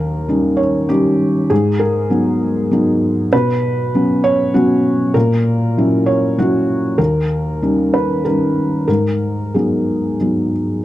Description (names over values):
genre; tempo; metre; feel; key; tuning
neoclassical minimalist piano; 98 BPM; 3/4; rubato; unclear; A4 = 436 Hz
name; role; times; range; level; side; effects
felt-muted upright piano; solo; 0.0-10.8 s; D#2 to C#5; -14 LUFS; equal; none
room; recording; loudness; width
small room ambience; dry, close 1970s-style studio recording; -14 LUFS; side -14 dB against mid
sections
0.0-10.8 A section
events
none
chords
0.0 D#7; 1.5 G#m7; 3.3 Bsus2; 5.1 F#7/A#; 7.0 D#7; 8.9 G#m7